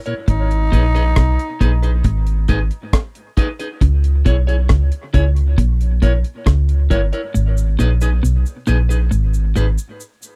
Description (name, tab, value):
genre	dub reggae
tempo	68 BPM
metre	4/4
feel	straight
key	G# minor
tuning	A4 = 445 Hz
part	clean electric guitar	accompaniment	0.1-9.7 s	D#4 to C#5	-28 LUFS	equal	dub echo
part	deep reggae drum kit	drums	0.1-7.3 s	hi-hat, kick drum, rim click	-18 LUFS	equal	none
part	growling tenor saxophone	melody	0.3-1.6 s	D#4	-26 LUFS	equal	dub echo
part	clean electric guitar	riff	0.3-9.7 s	G2 to C#3	-24 LUFS	equal	none
part	soft dub sub bass	bass	0.3-9.8 s	G1 to C#2	-18 LUFS	equal	none
part	cabasa	percussion	7.4-10.4 s	none	-38 LUFS	equal	none
room	little or no reverb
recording	dry, close 1970s-style studio recording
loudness	-17 LUFS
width	mono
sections	0.0-10.4 A section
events	break 0.0; part muted 0.3-7.3, 7.3-10.4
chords	0.3 G#m; 3.8 C#m; 5.6 A#dim; 7.3 G#m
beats	| 0.28 1.17 2.05 2.93 | 3.82 4.70 5.58 6.47 | 7.35 8.23 9.12 10.00